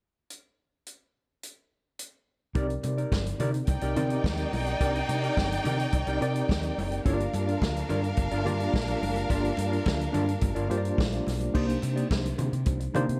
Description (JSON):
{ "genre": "disco", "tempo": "107 BPM", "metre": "4/4", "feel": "straight", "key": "C minor", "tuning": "A4 = 438 Hz", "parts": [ { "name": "vintage drum kit", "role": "drums", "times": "0.3-13.2 s", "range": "crash cymbal, hi-hat, kick drum, snare drum", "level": "-33 LUFS", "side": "equal", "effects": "gated reverb" }, { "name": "mellow electric guitar", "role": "accompaniment", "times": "2.5-13.1 s", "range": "Bb3 to D5", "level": "-36 LUFS", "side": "equal", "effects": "none" }, { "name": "tine electric piano", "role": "accompaniment", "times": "2.6-13.2 s", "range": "Bb3 to D5", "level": "-35 LUFS", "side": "equal", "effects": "medium tremolo" }, { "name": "overdriven fingered electric bass", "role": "bass", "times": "2.6-13.2 s", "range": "F#1 to C3", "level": "-33 LUFS", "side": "equal", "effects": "none" }, { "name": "congas", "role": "percussion", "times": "2.8-13.1 s", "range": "none", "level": "-40 LUFS", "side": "equal", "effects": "none" }, { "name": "warm studio violin section", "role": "second line", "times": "3.7-11.5 s", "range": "D4 to G5", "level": "-35 LUFS", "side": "equal", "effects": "none" } ], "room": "little or no reverb", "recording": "none", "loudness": "-28 LUFS", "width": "mono", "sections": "0.3-2.6 A section; 2.6-11.5 B section; 11.5-13.2 C section", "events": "none", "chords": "0.3 N.C.; 2.6 Cm9; 7.1 Gm7; 11.5 Cm9", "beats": "| 0.31 0.87 1.43 1.99 | 2.56 3.12 3.68 4.24 | 4.80 5.37 5.93 6.49 | 7.05 7.62 8.18 8.74 | 9.30 9.86 10.43 10.99 | 11.55 12.11 12.67" }